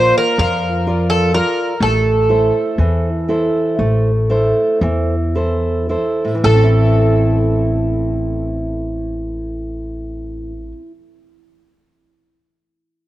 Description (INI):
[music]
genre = greek folk, Greek bouzouki band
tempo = 108-128 BPM (eighths)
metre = 9/8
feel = straight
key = A phrygian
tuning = A4 = 440 Hz
[part]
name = Greek bouzouki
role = melody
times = 0.0-10.7 s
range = A4 to C5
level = -18 LUFS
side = equal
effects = cassette tape
[part]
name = fingerpicked steel-string acoustic guitar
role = accompaniment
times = 0.0-10.9 s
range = A2 to D5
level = -18 LUFS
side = right 1 dB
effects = none
[part]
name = upright bass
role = bass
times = 0.0-10.7 s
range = A1 to F2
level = -18 LUFS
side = equal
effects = none
[sound]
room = moderate lush hall reverb, RT60 2.8 s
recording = home recording on cassette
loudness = -14 LUFS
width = side -15 dB against mid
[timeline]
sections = 0.0-6.4 A section; 6.4-11.4 B section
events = slowing down 0.0-6.4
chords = 0.0 Bb; 1.8 Am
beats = 0.39 0.86 1.34 | 1.81 2.30 2.79 3.29 3.79 4.30 4.82 5.35 5.89 | 6.44 6.99 7.55 8.10 8.65 9.20 9.75 10.29 10.84